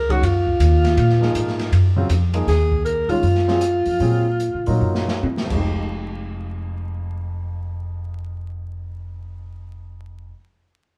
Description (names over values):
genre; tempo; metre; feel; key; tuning
modal jazz; 136-160 BPM; 4/4; swing 64% on 8ths; F minor; A4 = 439 Hz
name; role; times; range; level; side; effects
breathy alto saxophone; melody; 0.0-5.2 s; F4 to Bb4; -23 LUFS; equal; none
upright bass; bass; 0.0-10.3 s; F1 to Db3; -23 LUFS; equal; none
warm upright piano; accompaniment; 0.1-10.4 s; F2 to Ab4; -30 LUFS; equal; none
open jazz drum kit; drums; 0.1-5.6 s; crash cymbal, hi-hat, kick drum, ride cymbal, rim click, snare drum, toms; -30 LUFS; equal; none
room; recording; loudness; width
moderate large studio reverb, RT60 1.5 s; band playing live in one room, vinyl crackle; -20 LUFS; mono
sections
0.0-2.5 A section; 2.5-5.7 B section; 5.7-9.2 C section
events
slowing down 2.5-5.7; drum fill 4.8-5.7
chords
0.0 Ebm9; 5.4 Fm9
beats
0.23 0.60 | 0.98 1.35 1.73 2.10 | 2.48 2.85 3.23 3.61 | 4.00 4.40 4.81 5.23 | 5.66 6.11 6.55 6.99 | 7.43 7.87 8.31 8.75